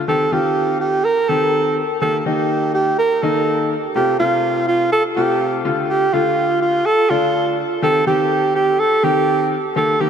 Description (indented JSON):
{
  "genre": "pop",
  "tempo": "124 BPM",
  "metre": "4/4",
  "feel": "straight",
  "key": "C dorian",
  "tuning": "A4 = 436 Hz",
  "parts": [
    { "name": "breathy alto saxophone", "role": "melody", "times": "0.1-10.1 s", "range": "F4 to Bb4", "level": "-16 LUFS", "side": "right 2 dB", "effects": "tape echo" },
    { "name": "clear concert grand piano", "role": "accompaniment", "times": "0.1-10.1 s", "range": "C3 to G4", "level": "-21 LUFS", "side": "left 4 dB", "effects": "none" }
  ],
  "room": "wet huge ambient reverb, RT60 4.6 s",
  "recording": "dreamy mix soaked in reverb, high-pass filter",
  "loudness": "-15 LUFS",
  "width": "side -8 dB against mid",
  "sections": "0.1-10.1 A section",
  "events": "build-up 0.1-10.1",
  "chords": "0.1 Cm; 2.0 Eb; 4.0 F; 5.6 Dm; 7.8 Cm"
}